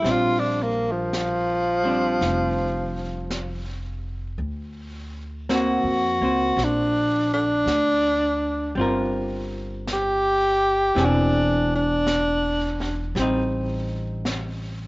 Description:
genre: jazz ballad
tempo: 55 BPM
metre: 4/4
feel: swing 67% on 8ths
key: unclear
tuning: A4 = 440 Hz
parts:
  - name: breathy tenor saxophone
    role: melody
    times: 0.0-13.1 s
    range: F3 to G4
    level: -21 LUFS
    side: equal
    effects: cassette tape
  - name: vintage hollow-body jazz guitar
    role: accompaniment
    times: 0.0-14.9 s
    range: E3 to Bb4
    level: -27 LUFS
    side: equal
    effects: cassette tape
  - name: upright bass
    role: bass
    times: 0.0-14.9 s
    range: E1 to E#2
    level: -29 LUFS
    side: equal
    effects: none
  - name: jazz brush drum kit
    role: drums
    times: 0.0-14.9 s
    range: brushed snare drum, hi-hat, snare drum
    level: -34 LUFS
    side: equal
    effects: cassette tape
room: light reverb, small room ambience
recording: home recording on cassette, nothing above 7.7 kHz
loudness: -20 LUFS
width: side -22 dB against mid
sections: 0.0-14.9 A section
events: tenor saxophone solo 0.0-14.9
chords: 0.1 Bb69; 4.4 D7b13; 8.8 Gm7; 11.0 E7b13; 13.2 Am7b5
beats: | 0.05 1.14 2.22 3.31 | 4.40 5.49 6.58 7.68 | 8.78 9.88 10.97 12.07 | 13.16 14.26

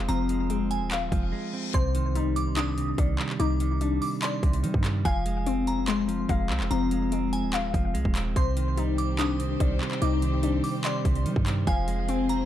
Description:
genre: hip hop, trap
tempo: 145 BPM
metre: 4/4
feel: half-time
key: C minor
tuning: A4 = 440 Hz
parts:
  - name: clean electric guitar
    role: accompaniment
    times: 0.0-12.5 s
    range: C3 to C4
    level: -31 LUFS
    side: right 5 dB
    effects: low-pass filter
  - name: warbly dusty pluck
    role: arpeggios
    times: 0.0-12.5 s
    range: Ab3 to F5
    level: -30 LUFS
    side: left 8 dB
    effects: chorus, low-pass filter, ping-pong delay
  - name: hard-hitting 808-style bass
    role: bass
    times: 0.0-12.5 s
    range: Eb1 to G3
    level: -28 LUFS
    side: equal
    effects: none
  - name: glassy synth bell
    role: second line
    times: 0.1-12.5 s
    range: Ab5 to Eb6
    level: -36 LUFS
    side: right 4 dB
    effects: chorus, tremolo, ping-pong delay
  - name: trap drum kit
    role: drums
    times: 0.1-12.4 s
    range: handclaps, hi-hat, kick drum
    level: -29 LUFS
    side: equal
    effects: overdrive
  - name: reverse cymbal and impact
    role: sound effects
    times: 1.2-3.4 s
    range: none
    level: -41 LUFS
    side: left 2 dB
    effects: none
  - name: warm chamber string section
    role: sustained chords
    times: 8.4-12.5 s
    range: Eb3 to C5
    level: -37 LUFS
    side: left 1 dB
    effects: none
room: digital ambience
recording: dark, warm production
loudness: -24 LUFS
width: side -12 dB against mid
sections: 0.0-1.7 A section; 1.7-12.5 B section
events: reverse cymbal 1.2-1.7; break 1.3-1.7; impact 1.7-3.4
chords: 0.0 Fm; 1.7 Cmadd9; 5.1 Fm; 8.4 Cmadd9; 11.7 Fm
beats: | 0.09 0.50 0.91 1.33 | 1.74 2.15 2.57 2.98 | 3.40 3.81 4.22 4.64 | 5.05 5.46 5.88 6.29 | 6.71 7.12 7.53 7.95 | 8.36 8.78 9.19 9.60 | 10.02 10.43 10.84 11.26 | 11.67 12.09

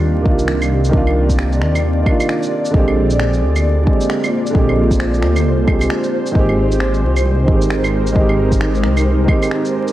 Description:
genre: future garage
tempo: 133 BPM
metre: 4/4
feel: swing 60% on 16ths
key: unclear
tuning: A4 = 441 Hz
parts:
  - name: felt-muted upright piano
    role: accompaniment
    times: 0.0-9.9 s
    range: D3 to G4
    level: -18 LUFS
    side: right 2 dB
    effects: vintage 12-bit sampler grit, sidechain pumping, analog delay
  - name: ethereal airy pad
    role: sustained chords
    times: 0.0-9.9 s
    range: Ab3 to D5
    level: -21 LUFS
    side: equal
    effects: ensemble chorus, built-in reverb, tremolo, vintage 12-bit sampler grit, sidechain pumping
  - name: dark detuned saw bass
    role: bass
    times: 0.0-9.3 s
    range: Ab1 to Eb2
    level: -16 LUFS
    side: equal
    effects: sidechain pumping
  - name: electronic kick drum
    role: drums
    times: 0.3-9.4 s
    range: none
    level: -15 LUFS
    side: equal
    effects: vintage 12-bit sampler grit, small room ambience
  - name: electronic shaker, finger snaps and claves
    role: drums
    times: 0.4-9.9 s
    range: none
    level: -26 LUFS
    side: right 1 dB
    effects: vintage 12-bit sampler grit, small room ambience
room: moderate lush hall reverb, RT60 2.0 s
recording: dreamy mix soaked in reverb, vinyl crackle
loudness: -13 LUFS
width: side -14 dB against mid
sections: 0.0-9.9 A section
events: none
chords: 0.0 Cm11; 2.7 Bb13; 6.4 Abmaj7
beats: 0.04 0.49 | 0.94 1.39 1.84 2.29 | 2.74 3.19 3.65 4.10 | 4.55 5.00 5.45 5.90 | 6.35 6.80 7.25 7.71 | 8.16 8.61 9.06 9.51

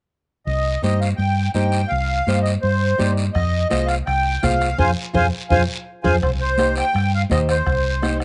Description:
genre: latin, cumbia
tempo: 167 BPM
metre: 4/4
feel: straight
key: C minor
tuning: A4 = 440 Hz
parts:
  - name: accordion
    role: melody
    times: 0.5-8.2 s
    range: C5 to Ab5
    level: -24 LUFS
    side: equal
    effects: light tremolo tuning, plate reverb
  - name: hollow-body short-scale fingered electric bass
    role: bass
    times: 0.5-8.2 s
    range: C2 to G2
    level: -23 LUFS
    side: equal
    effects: none
  - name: congas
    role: percussion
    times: 0.5-8.2 s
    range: none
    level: -30 LUFS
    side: equal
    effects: none
  - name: guiro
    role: percussion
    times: 0.5-8.2 s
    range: none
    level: -36 LUFS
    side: equal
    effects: none
  - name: flamenco guitar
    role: accompaniment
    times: 0.8-8.2 s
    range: Eb4 to D5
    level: -28 LUFS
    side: equal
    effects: plate reverb
  - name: bombo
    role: percussion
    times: 3.4-8.2 s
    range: none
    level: -28 LUFS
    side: equal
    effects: none
room: light reverb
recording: rough home demo mix, nothing above 10.6 kHz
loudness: -20 LUFS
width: mono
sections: 0.5-6.2 A section; 6.2-8.2 B section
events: band accent 4.8-6.2; drum fill 5.2-6.2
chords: 0.5 Cm; 3.4 Fm; 6.2 Cm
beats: | 0.47 0.83 1.19 1.55 | 1.91 2.27 2.63 2.99 | 3.35 3.71 4.07 4.43 | 4.79 5.15 5.51 5.87 | 6.23 6.59 6.95 7.31 | 7.67 8.03

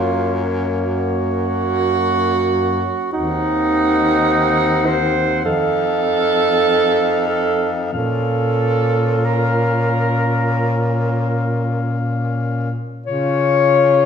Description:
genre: classical, lyrical piece for single-reed quartet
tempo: 46-52 BPM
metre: 4/4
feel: rubato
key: Bb minor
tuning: A4 = 440 Hz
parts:
  - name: warm clarinet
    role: melody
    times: 0.0-14.1 s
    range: Db5 to Gb5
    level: -22 LUFS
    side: left 8 dB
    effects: none
  - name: clear alto saxophone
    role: second line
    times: 0.0-14.1 s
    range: Eb4 to Db5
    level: -19 LUFS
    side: right 4 dB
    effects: none
  - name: warm tenor saxophone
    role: accompaniment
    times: 0.0-14.1 s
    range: Bb3 to F4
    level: -24 LUFS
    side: left 3 dB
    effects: none
  - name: clear baritone saxophone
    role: bass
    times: 0.0-14.1 s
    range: Eb2 to Db3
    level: -20 LUFS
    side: equal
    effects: none
room: wet recital hall reverb, RT60 1.4 s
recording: heard from further back in the room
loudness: -15 LUFS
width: side -7 dB against mid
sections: 0.0-13.1 A section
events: none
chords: 0.0 Gb; 3.1 Cdim/Eb; 5.5 F7; 7.9 Bbm; 13.1 Db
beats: 0.83 1.99 | 3.14 4.29 5.45 6.66 | 7.94 9.25 10.54 11.81 | 13.07

